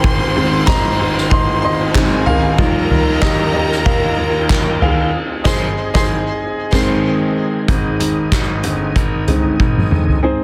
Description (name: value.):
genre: piano-driven pop.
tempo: 94 BPM.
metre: 4/4.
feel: swing 56% on 16ths.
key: Ab major.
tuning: A4 = 441 Hz.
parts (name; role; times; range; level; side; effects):
rich studio violin section; second line; 0.0-7.0 s; Ab4 to C6; -26 LUFS; equal; delay.
warm upright piano; accompaniment; 0.0-10.4 s; Ab2 to C6; -21 LUFS; equal; none.
tonewheel organ; sustained chords; 0.0-10.2 s; Eb3 to G5; -28 LUFS; equal; overdrive, chorus vibrato, slow rotary speaker.
bright concert grand piano; bass; 0.0-10.2 s; G1 to Eb2; -23 LUFS; equal; none.
soft-mallet drum kit; drums; 0.0-10.2 s; crash cymbal, handclaps, hi-hat, kick drum, ride cymbal, snare drum, toms; -19 LUFS; equal; none.
room: light reverb, small room ambience.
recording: dense, heavily limited modern master.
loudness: -16 LUFS.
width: mono.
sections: 0.0-7.7 A section; 7.7-10.2 B section.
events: upright piano solo 0.0-7.7, 7.7-10.2; band accent 5.1-7.7; drum fill 9.6-10.2.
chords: 0.0 Ab; 2.6 Ebadd9; 5.1 Ab.